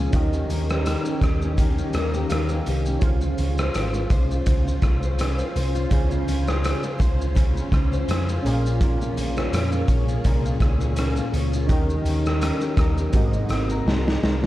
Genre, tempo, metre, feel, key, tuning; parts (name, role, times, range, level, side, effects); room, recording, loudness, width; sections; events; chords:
indie pop, bedroom pop; 83 BPM; 4/4; swing 55% on 16ths; Db major; A4 = 440 Hz
nylon-string guitar; accompaniment; 0.0-14.5 s; Ab2 to Db5; -28 LUFS; left 3 dB; analog chorus, warbly pitch drift
warbly lo-fi synth keys; accompaniment; 0.0-14.5 s; C4 to Ab5; -32 LUFS; right 4 dB; chorus, cassette tape
soft string machine; sustained chords; 0.0-14.5 s; C3 to C5; -33 LUFS; equal; ensemble chorus
hollow-body short-scale picked electric bass; bass; 0.0-14.5 s; Ab1 to F2; -24 LUFS; equal
raw garage drum kit; drums; 0.1-14.5 s; hi-hat, kick drum, rim click, shaker, snare drum; -23 LUFS; equal
small room ambience; dark, warm production; -20 LUFS; side -15 dB against mid
0.0-14.5 A section
synth keys fill 1.9-3.0; drum fill 13.9-14.5
0.1 Eb7; 3.0 Dbmaj7; 8.4 Bbm7; 11.7 Eb7; 13.1 Ab9